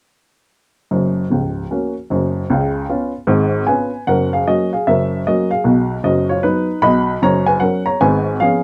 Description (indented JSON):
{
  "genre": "jazz, stride piano",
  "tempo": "152 BPM",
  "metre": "4/4",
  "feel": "swing 63% on 8ths",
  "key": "F# major",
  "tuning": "A4 = 442 Hz",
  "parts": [
    { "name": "warm upright piano", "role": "solo", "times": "0.9-8.6 s", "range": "C#1 to B5", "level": "-17 LUFS", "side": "equal", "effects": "none" }
  ],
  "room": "moderate studio ambience, RT60 0.4 s",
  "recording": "dark, warm production",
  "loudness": "-17 LUFS",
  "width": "mono",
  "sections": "0.9-4.1 A section; 4.1-8.6 B section",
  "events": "none",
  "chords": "0.9 F#; 2.5 C#7; 4.1 F#; 5.7 B; 7.2 F#; 8.0 C#7/G#"
}